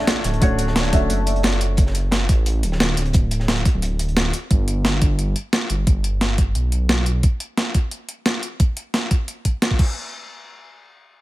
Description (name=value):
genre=liquid drum and bass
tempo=176 BPM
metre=4/4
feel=straight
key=unclear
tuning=A4 = 439 Hz
part: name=felt-muted upright piano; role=accompaniment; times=0.0-1.8 s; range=A3 to E5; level=-24 LUFS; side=left 1 dB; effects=low-pass filter, ping-pong delay
part: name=breakbeat sampler-style drum kit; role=drums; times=0.1-9.9 s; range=crash cymbal, hi-hat, snare drum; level=-22 LUFS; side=equal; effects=none
part: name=crunchy breakbeat drum kit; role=drums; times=0.1-4.4 s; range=hi-hat, snare drum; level=-32 LUFS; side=equal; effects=high-pass filter on hats, high-pass filter on snare, high-pass filter on room
part: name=dark detuned saw bass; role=bass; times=0.2-7.2 s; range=D1 to B1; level=-21 LUFS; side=equal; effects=none
part: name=electronic kick drum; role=drums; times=0.4-9.9 s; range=none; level=-17 LUFS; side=equal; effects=overdrive
room=small room reverb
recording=none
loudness=-17 LUFS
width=side -17 dB against mid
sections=0.0-10.0 A section; 10.0-11.2 B section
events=filter sweep on felt piano 0.0-1.8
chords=0.0 Dmaj7; 4.3 G; 9.8 N.C.